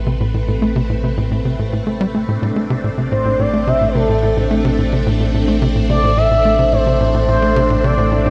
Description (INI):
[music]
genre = ambient, sequencer-driven space music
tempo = 108 BPM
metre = 4/4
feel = straight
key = A minor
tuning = A4 = 440 Hz
[part]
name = string machine, full ensemble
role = sustained chords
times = 0.0-8.3 s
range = A3 to B4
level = -23 LUFS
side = equal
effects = phaser, ensemble chorus
[part]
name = warm sub bass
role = bass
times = 0.0-8.3 s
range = A1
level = -23 LUFS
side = equal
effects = none
[part]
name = tight sequencer bass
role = riff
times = 0.1-8.3 s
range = A2 to A3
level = -20 LUFS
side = equal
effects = delay
[part]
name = expressive synth lead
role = melody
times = 3.1-8.3 s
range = A4 to E5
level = -20 LUFS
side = equal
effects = chorus, delay
[sound]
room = wet huge ambient reverb, RT60 7.5 s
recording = none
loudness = -16 LUFS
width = mono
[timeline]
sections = 0.0-8.3 A section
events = fade-in on string machine 0.0-8.3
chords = 0.0 Amadd9